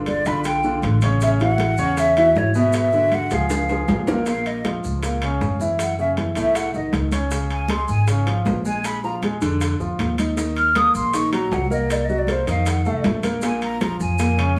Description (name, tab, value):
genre	Afro-Cuban jazz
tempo	157 BPM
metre	4/4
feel	straight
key	Bb minor from 4.3 s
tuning	A4 = 442 Hz
part	clear concert grand piano	accompaniment	0.0-14.6 s	A2 to Eb5	-26 LUFS	equal	none
part	upright bass	bass	0.0-14.5 s	G1 to Gb2	-26 LUFS	equal	none
part	breathy mellow silver concert flute	melody	0.1-14.6 s	C5 to F6	-24 LUFS	equal	none
part	bongos	percussion	0.1-14.4 s	none	-34 LUFS	equal	none
part	congas	percussion	0.1-14.6 s	none	-32 LUFS	equal	none
part	maracas	percussion	0.1-14.6 s	none	-41 LUFS	equal	none
part	timbales	percussion	0.1-14.6 s	none	-32 LUFS	equal	none
room	wet studio reverb, RT60 0.8 s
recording	band playing live in one room, small room ambience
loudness	-20 LUFS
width	mono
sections	0.0-4.3 A section; 4.3-14.6 B section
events	drum fill 3.3-4.3; flute solo 4.3-14.6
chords	0.0 G9; 1.2 A69; 2.7 G#m7b5; 3.5 C#; 4.3 Bbm; 5.8 Gbm7; 6.6 B9; 7.3 Db; 8.8 Bb7; 10.4 Ebm; 11.9 Cm7b5; 12.7 F7b9; 13.4 Bbm7